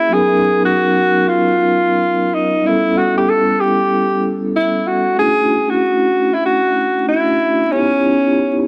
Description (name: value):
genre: hip hop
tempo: 95 BPM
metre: 4/4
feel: swing 63% on 16ths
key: unclear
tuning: A4 = 440 Hz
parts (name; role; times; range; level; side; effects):
- breathy alto saxophone; melody; 0.0-8.7 s; C#4 to A4; -17 LUFS; equal; cassette tape
- vibraphone with soft mallets; accompaniment; 0.0-8.7 s; F#3 to A#4; -20 LUFS; equal; none
room: moderate lush hall reverb, RT60 3.2 s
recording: home recording on cassette, vinyl crackle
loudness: -15 LUFS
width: mono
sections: 0.0-8.7 A section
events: none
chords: 0.1 Bmaj7; 2.6 A7; 5.2 Dmaj7; 7.7 C#m7b5